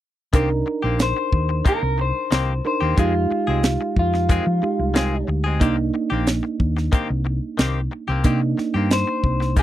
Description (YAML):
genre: straight-eighth soul blues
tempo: 91 BPM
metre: 4/4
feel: straight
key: C minor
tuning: A4 = 439 Hz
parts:
  - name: reed electric piano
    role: accompaniment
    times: 0.3-9.6 s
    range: Ab3 to Bb4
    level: -25 LUFS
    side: right 5 dB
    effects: none
  - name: direct-recorded clean electric guitar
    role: stabs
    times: 0.3-9.6 s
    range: Eb3 to Ab4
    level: -26 LUFS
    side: left 5 dB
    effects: none
  - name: hollow-body short-scale fingered electric bass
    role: bass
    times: 0.3-9.6 s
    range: Bb1 to F3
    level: -22 LUFS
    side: equal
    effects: none
  - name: tight funk drum kit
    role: drums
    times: 0.3-9.6 s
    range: hi-hat, kick drum, snare drum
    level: -19 LUFS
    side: equal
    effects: none
  - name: electric guitar through a small old amp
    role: melody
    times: 1.0-9.6 s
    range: F4 to C5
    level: -24 LUFS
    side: left 2 dB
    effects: none
room: little or no reverb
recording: dry, close 1970s-style studio recording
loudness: -18 LUFS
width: side -13 dB against mid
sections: 0.3-9.6 A section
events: none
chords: 0.3 Cm7; 3.0 Fm7; 5.6 Cm7